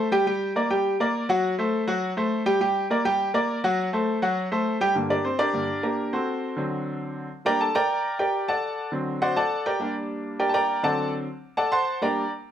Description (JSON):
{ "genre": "latin", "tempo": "204 BPM", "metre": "4/4", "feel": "straight", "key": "G harmonic minor", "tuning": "A4 = 440 Hz", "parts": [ { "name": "clear grand piano", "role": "solo", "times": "0.0-12.3 s", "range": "G2 to C6", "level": "-22 LUFS", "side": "equal", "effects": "none" } ], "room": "moderate studio reverb, RT60 0.8 s", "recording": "none", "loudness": "-22 LUFS", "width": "side -10 dB against mid", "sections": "0.0-5.0 A section; 5.0-12.5 B section", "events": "grand piano solo 5.0-12.5", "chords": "0.3 Gm; 1.4 F#dim; 2.6 Gm; 3.8 F#dim; 5.0 Gm; 6.1 D7; 7.3 Gm; 8.5 D7; 9.7 Gm; 10.8 D7" }